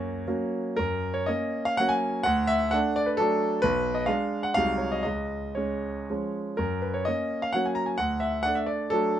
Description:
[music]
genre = classical, romantic triple-time dance for piano with dotted rhythms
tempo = 107-146 BPM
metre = 3/4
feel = rubato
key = F# major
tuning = A4 = 440 Hz
[part]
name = warm grand piano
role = solo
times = 0.0-9.2 s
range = B1 to A#5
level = -24 LUFS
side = equal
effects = none
[sound]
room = light reverb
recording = close, detailed microphones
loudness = -24 LUFS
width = side -10 dB against mid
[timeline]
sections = 0.8-9.2 A section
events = none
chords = 0.0 F#; 2.3 D; 3.6 G#dim/B; 4.6 G#7/B#; 5.0 C#; 6.6 F#; 8.0 D

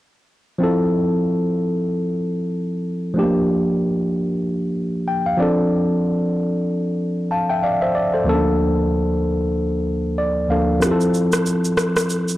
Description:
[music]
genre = afrobeats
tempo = 94 BPM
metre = 4/4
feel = swing 58% on 16ths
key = unclear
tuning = A4 = 441 Hz
[part]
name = tine electric piano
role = accompaniment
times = 0.6-12.4 s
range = D2 to A5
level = -18 LUFS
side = equal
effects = none
[part]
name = electronic shaker and rim click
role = drums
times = 10.8-12.4 s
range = none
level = -22 LUFS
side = equal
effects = none
[sound]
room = moderate spring reverb, RT60 1.9 s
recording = blown-out, overdriven recording, overdrive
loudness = -18 LUFS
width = side -16 dB against mid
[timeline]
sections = 0.6-12.4 A section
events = tine electric piano fill 4.8-5.7, 9.9-10.8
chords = 0.6 Fmaj7; 3.2 Gm7; 5.4 Dm7; 8.3 Bbmaj7/D; 10.8 Fmaj7

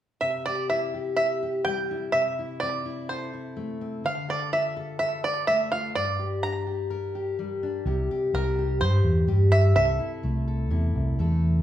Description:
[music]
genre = indie folk with a building arrangement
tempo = 126 BPM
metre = 4/4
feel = straight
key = C mixolydian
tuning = A4 = 440 Hz
[part]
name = bluegrass banjo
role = melody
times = 0.2-11.1 s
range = Bb4 to Bb5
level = -26 LUFS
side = right 2 dB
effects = slapback echo
[part]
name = fingerpicked steel-string acoustic guitar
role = accompaniment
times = 0.2-11.6 s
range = G2 to Bb4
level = -30 LUFS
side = left 2 dB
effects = none
[part]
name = fingered electric bass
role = bass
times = 7.9-11.6 s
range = C2 to G2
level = -22 LUFS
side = equal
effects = none
[sound]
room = wet large studio reverb, RT60 1.2 s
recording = band playing live in one room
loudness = -23 LUFS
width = side -11 dB against mid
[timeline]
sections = 0.2-7.9 A section; 7.9-11.6 B section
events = none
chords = 0.2 C; 2.1 Am/C; 4.0 Dm; 6.0 Gm; 7.9 C5; 9.8 Am/C

